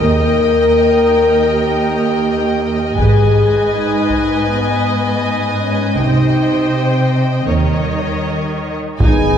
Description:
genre	cinematic, epic orchestral film score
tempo	80 BPM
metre	4/4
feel	straight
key	unclear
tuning	A4 = 439 Hz
part	rich symphonic violin section	melody	0.0-9.4 s	Eb5 to Ab5	-23 LUFS	left 1 dB	none
part	clear studio violin section	second line	0.0-9.4 s	Db5 to G#5	-23 LUFS	left 2 dB	none
part	rich studio viola section	accompaniment	0.0-9.4 s	D#4 to D#5	-25 LUFS	right 1 dB	none
part	mellow French horn section	sustained chords	0.0-9.4 s	G3 to Bb4	-16 LUFS	left 2 dB	none
part	rich symphonic cello section	bass	0.0-9.1 s	Eb2 to Eb3	-18 LUFS	right 2 dB	none
part	rich symphonic double bass section	bass	0.0-9.1 s	Ab1 to Eb2	-19 LUFS	right 2 dB	none
part	solo taiko drums	drums	3.0-4.4, 9.0-9.4 s	none	-19 LUFS	equal	none
part	dark trombone section	sustained chords	9.0-9.4 s	D#3 to B3	-22 LUFS	right 4 dB	none
part	dark trumpet	stabs	9.0-9.4 s	B4	-26 LUFS	right 4 dB	none
part	impact	sound effects	9.2-9.4 s	none	-26 LUFS	equal	none
room	wet scoring stage reverb, RT60 2.0 s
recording	heard from further back in the room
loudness	-12 LUFS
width	side -8 dB against mid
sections	0.0-9.0 A section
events	impact 9.0-9.4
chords	0.0 Eb; 3.0 Abm; 6.0 Cm; 7.5 Eb7

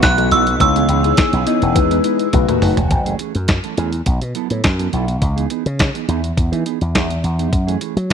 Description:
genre	early-eighties boogie funk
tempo	104 BPM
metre	4/4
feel	straight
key	F# dorian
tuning	A4 = 440 Hz
part	metallic FM bell	melody	0.0-2.3 s	E6 to F#6	-18 LUFS	right 2 dB	chorus, slapback echo
part	string machine, full ensemble	sustained chords	0.0-2.9 s	E3 to G#4	-24 LUFS	equal	ensemble chorus
part	mellow electric guitar	riff	0.0-8.1 s	E3 to B4	-24 LUFS	right 14 dB	wide subtle chorus
part	slap bass with an envelope filter	bass	0.0-8.1 s	E1 to F#3	-18 LUFS	equal	none
part	crisp 8-bit digital drum machine	drums	0.0-8.1 s	hi-hat, kick drum, snare drum, toms	-18 LUFS	equal	none
part	mellow tine electric piano	accompaniment	0.2-2.8 s	G#3 to D#5	-20 LUFS	left 12 dB	none
room	digital ambience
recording	1960s-style stereo with parts hard left and right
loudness	-14 LUFS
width	side -7 dB against mid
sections	0.0-2.9 A section; 2.9-8.1 B section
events	drum fill 2.3-2.9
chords	0.0 B7sus4; 0.6 C#m9; 1.8 Emaj7; 2.3 B7; 2.9 F#m9; 4.1 B7sus4; 5.2 C#m9; 6.4 Emaj7; 7.5 F#m9

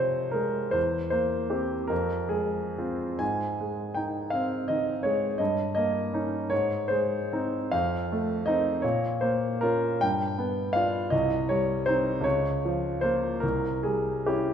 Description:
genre	classical, romantic character piece for solo piano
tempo	43-57 BPM (dotted quarters)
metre	6/8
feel	rubato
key	F minor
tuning	A4 = 440 Hz
part	clear concert grand piano	solo	0.0-14.5 s	C2 to Ab5	-25 LUFS	equal	none
room	wet scoring stage reverb, RT60 1.8 s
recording	recorded in a church or concert hall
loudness	-25 LUFS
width	side -8 dB against mid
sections	0.0-14.5 A section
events	none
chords	0.0 Fm; 0.8 C7/E; 1.9 Fm; 3.2 Ab; 5.4 Eb7/G; 6.5 Ab; 7.7 F7; 8.8 Bbm; 10.0 G7; 11.1 Cm; 12.2 Bbm/Db; 13.4 C

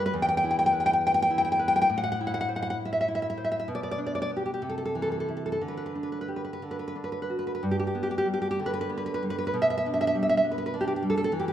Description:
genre	romantic piece for solo classical guitar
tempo	58-70 BPM (dotted quarters)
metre	6/8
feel	rubato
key	G major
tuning	A4 = 437 Hz
part	nylon-string guitar	solo	0.0-11.5 s	E2 to G5	-25 LUFS	equal	none
room	moderate recital hall reverb, RT60 1.5 s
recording	recorded in a church or concert hall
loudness	-25 LUFS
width	side -11 dB against mid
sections	0.0-7.6 A section; 7.6-11.5 B section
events	none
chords	0.1 E5; 1.9 Am; 3.7 Bm; 4.6 C6; 5.6 G5/D; 6.6 D; 7.6 G; 9.6 G/B

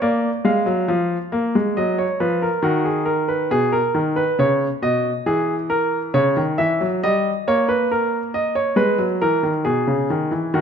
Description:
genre	classical, baroque-style two-part invention for grand piano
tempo	69 BPM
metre	4/4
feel	straight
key	G# minor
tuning	A4 = 439 Hz
part	clear baby grand piano	solo	0.0-10.6 s	B2 to E#5	-17 LUFS	equal	none
room	moderate recital hall reverb, RT60 1.5 s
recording	nothing above 7.8 kHz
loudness	-17 LUFS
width	side -7 dB against mid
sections	0.0-10.6 A section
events	none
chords	0.0 A#7; 1.8 D#m; 3.5 G#m/B (rootless); 5.3 A#m7b5/E; 7.0 D#7/G; 8.8 G#m

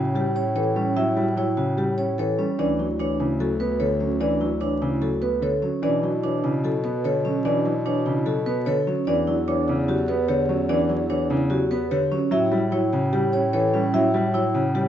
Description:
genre	classical, minimalist pattern music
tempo	148 BPM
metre	4/4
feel	straight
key	E dorian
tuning	A4 = 439 Hz
part	dark grand piano	accompaniment	0.0-14.9 s	C#3 to C#4	-26 LUFS	left 1 dB	none
part	vibraphone with soft mallets	arpeggios	0.0-14.9 s	C#4 to C#5	-26 LUFS	right 5 dB	none
part	warm bass clarinet	bass	0.0-14.9 s	D2 to B2	-27 LUFS	equal	none
part	marimba with soft mallets	melody	0.2-14.9 s	G4 to E5	-27 LUFS	left 4 dB	none
room	light reverb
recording	vinyl crackle, nothing above 7.7 kHz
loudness	-20 LUFS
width	side -10 dB against mid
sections	0.0-14.9 A section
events	none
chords	0.0 A7; 2.6 Dmaj9; 5.8 Bm9; 9.1 Em9; 12.3 A7

